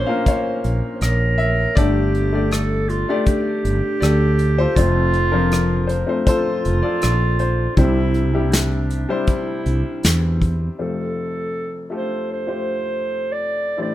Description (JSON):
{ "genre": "acoustic folk-pop ballad", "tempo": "80 BPM", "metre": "4/4", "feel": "straight", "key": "F major", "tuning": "A4 = 440 Hz", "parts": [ { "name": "warm upright piano", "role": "melody", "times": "0.0-13.9 s", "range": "F1 to F5", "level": "-22 LUFS", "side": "left 3 dB", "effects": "none" }, { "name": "mellow clarinet", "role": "second line", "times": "0.0-13.9 s", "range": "D4 to D5", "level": "-24 LUFS", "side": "right 3 dB", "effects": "none" }, { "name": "mellow fretless electric bass", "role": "bass", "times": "0.0-10.7 s", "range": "F1 to E2", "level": "-19 LUFS", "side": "right 1 dB", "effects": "none" }, { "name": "soft brush drum kit", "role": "drums", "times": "0.3-10.6 s", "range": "hi-hat, kick drum, rim click, snare drum", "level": "-20 LUFS", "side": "left 1 dB", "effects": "none" } ], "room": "little or no reverb", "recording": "minimal, uncompressed stereo recording", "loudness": "-17 LUFS", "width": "side -13 dB against mid", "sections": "0.0-10.8 A section; 10.8-13.9 B section", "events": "clarinet solo 10.8-13.9", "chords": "0.0 Bbmadd9; 1.8 Gsus2; 4.8 F; 7.8 Cadd9; 10.8 Fadd9" }